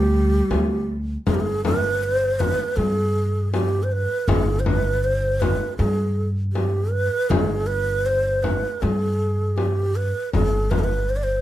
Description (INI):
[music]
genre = Persian modal ensemble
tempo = 79 BPM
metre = 4/4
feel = straight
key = G dastgah homayun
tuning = A4 = 438 Hz
[part]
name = breathy low ney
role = melody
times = 0.0-11.4 s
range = G4 to D5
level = -23 LUFS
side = right 2 dB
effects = none
[part]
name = rich symphonic cello section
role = second line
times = 0.0-0.9 s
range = G3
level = -28 LUFS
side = equal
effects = none
[part]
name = upright bass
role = bass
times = 0.0-11.4 s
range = G1 to G2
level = -23 LUFS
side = equal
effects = none
[part]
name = frame drum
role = percussion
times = 0.5-10.9 s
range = none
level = -25 LUFS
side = left 3 dB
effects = none
[sound]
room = little or no reverb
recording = none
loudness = -19 LUFS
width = side -13 dB against mid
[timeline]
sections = 0.0-1.3 A section; 1.3-11.4 B section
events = none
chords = none